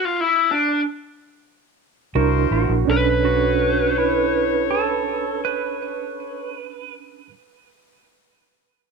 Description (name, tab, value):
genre	blues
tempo	82-96 BPM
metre	4/4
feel	straight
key	B minor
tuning	A4 = 440 Hz
part	lead guitar through a small cranked amp	melody	0.0-6.6 s	D4 to B4	-21 LUFS	left 1 dB	overdrive
part	warm horn section	sustained chords	2.1-6.6 s	E4 to C#5	-27 LUFS	left 15 dB	none
part	clean lap steel guitar	second line	2.2-6.9 s	E4 to B4	-26 LUFS	right 12 dB	tape echo
part	reed electric piano	accompaniment	2.2-7.3 s	C#4 to Bb4	-24 LUFS	right 15 dB	fast tremolo
part	vintage muted fingered electric bass	bass	2.2-7.3 s	A1 to C2	-23 LUFS	left 2 dB	none
room	moderate spring reverb, RT60 1.2 s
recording	1960s-style stereo with parts hard left and right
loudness	-18 LUFS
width	side -4 dB against mid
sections	0.0-2.9 A section; 2.9-5.8 B section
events	slowing down 0.0-2.9; stop 0.0-2.2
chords	0.0 N.C.; 2.2 C7; 2.9 Bm9